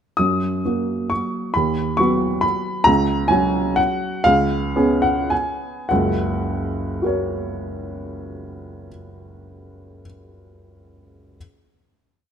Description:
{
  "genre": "classical, piano waltz",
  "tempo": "98-142 BPM",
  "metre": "3/4",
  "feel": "rubato",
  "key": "F# major",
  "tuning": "A4 = 444 Hz",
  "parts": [
    { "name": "warm upright piano", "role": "solo", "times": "0.2-11.4 s", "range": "F#1 to D#6", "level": "-18 LUFS", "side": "equal", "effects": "none" }
  ],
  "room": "moderate recital hall reverb, RT60 1.7 s",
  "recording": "close, detailed microphones",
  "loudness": "-18 LUFS",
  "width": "side -8 dB against mid",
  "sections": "0.2-5.9 A section; 5.9-9.2 final chord",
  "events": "slowing down 2.2-5.9",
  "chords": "0.2 F#; 1.6 B/D#; 2.9 F#/C#; 4.3 C#7; 5.9 F#"
}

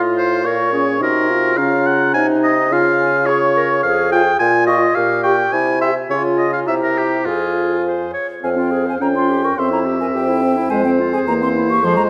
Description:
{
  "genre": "quick classical-period movement for wind quintet",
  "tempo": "106 BPM",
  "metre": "2/4",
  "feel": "straight",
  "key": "F minor from 3.8 s",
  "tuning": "A4 = 441 Hz",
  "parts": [
    { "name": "mellow hollow silver concert flute", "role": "melody", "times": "0.0-12.0 s", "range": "G5 to Db6", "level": "-26 LUFS", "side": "equal", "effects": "none" },
    { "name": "clear clarinet", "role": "accompaniment", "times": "0.0-12.1 s", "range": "F3 to Db5", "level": "-24 LUFS", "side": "equal", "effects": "none" },
    { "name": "warm French horn", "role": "accompaniment", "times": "0.0-12.1 s", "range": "Ab3 to G4", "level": "-24 LUFS", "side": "equal", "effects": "none" },
    { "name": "mellow bassoon", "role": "bass", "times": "0.0-12.1 s", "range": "E2 to Db3", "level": "-23 LUFS", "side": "equal", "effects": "none" },
    { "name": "clear oboe", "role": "second line", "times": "0.2-12.1 s", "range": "F4 to Ab5", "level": "-21 LUFS", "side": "equal", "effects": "none" }
  ],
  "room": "moderate concert hall reverb, RT60 1.9 s",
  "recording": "none",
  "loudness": "-16 LUFS",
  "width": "mono",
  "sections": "0.0-8.4 A section; 8.4-12.1 B section",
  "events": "none",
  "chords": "0.4 Bbm; 1.6 Db; 2.2 Ab/C; 2.7 Db; 3.8 Fm; 4.4 Bbm; 5.0 Gdim/Bb; 5.5 C; 6.1 Db; 6.7 C7; 7.3 Fm; 9.0 Gm7b5/F; 9.6 C7/F; 10.7 Fm; 11.3 C7/E"
}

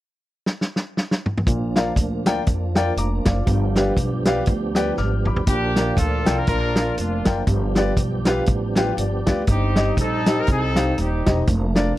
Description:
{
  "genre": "uptempo gospel",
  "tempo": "120 BPM",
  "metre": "4/4",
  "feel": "swing 58% on 8ths",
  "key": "Bb major",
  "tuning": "A4 = 440 Hz",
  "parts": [
    { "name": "warm soul drum kit", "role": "drums", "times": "0.5-11.9 s", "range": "hi-hat, kick drum, snare drum, toms", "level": "-21 LUFS", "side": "equal", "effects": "none" },
    { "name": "warm concert grand piano", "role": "accompaniment", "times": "1.5-11.9 s", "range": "G2 to F6", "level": "-24 LUFS", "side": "left 2 dB", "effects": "none" },
    { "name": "mellow French horn section", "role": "sustained chords", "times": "1.5-5.5 s", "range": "F3 to F4", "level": "-34 LUFS", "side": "right 1 dB", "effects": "none" },
    { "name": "tonewheel organ", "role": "sustained chords", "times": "1.5-12.0 s", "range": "F3 to G4", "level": "-28 LUFS", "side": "right 4 dB", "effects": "fast rotary speaker, chorus vibrato" },
    { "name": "upright bass", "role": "bass", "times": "1.5-11.9 s", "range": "Eb1 to F2", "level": "-24 LUFS", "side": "equal", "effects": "none" },
    { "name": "clear horn section", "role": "melody", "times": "5.5-11.4 s", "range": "Bb3 to Bb4", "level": "-24 LUFS", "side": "equal", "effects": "slapback echo" }
  ],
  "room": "little or no reverb",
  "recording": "dry, close 1970s-style studio recording",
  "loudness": "-18 LUFS",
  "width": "side -15 dB against mid",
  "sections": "0.0-1.5 A section; 1.5-5.5 B section; 5.5-12.0 C section",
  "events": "drum fill 0.5-1.5, 5.0-5.5; grand piano fill 8.5-9.5",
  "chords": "0.0 N.C.; 1.5 Bb; 3.5 G7; 5.5 Bb; 7.5 G7; 9.5 Cm/G; 11.5 Bb/F"
}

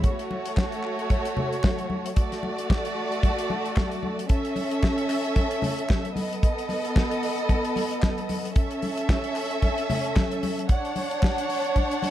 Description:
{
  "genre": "disco",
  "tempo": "113 BPM",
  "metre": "4/4",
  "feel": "swing 56% on 16ths",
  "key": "unclear",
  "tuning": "A4 = 440 Hz",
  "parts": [
    { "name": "warm studio violin section", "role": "second line", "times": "0.0-12.1 s", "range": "A3 to F#5", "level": "-27 LUFS", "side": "right 1 dB", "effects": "none" },
    { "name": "damped 70s drum kit", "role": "drums", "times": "0.0-12.1 s", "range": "hi-hat, kick drum, snare drum", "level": "-25 LUFS", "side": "equal", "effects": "none" },
    { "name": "congas", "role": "percussion", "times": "0.0-12.1 s", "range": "none", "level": "-33 LUFS", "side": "left 3 dB", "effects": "none" },
    { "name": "group handclap", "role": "percussion", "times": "0.6-11.4 s", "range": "none", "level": "-42 LUFS", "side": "left 2 dB", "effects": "none" }
  ],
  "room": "light reverb, small room ambience",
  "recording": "dark, warm production",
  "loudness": "-23 LUFS",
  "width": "side -12 dB against mid",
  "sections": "0.0-12.1 A section",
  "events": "none",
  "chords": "0.0 D/A; 4.3 A/C#; 6.2 B7; 8.6 A/C#; 10.7 Dmaj7"
}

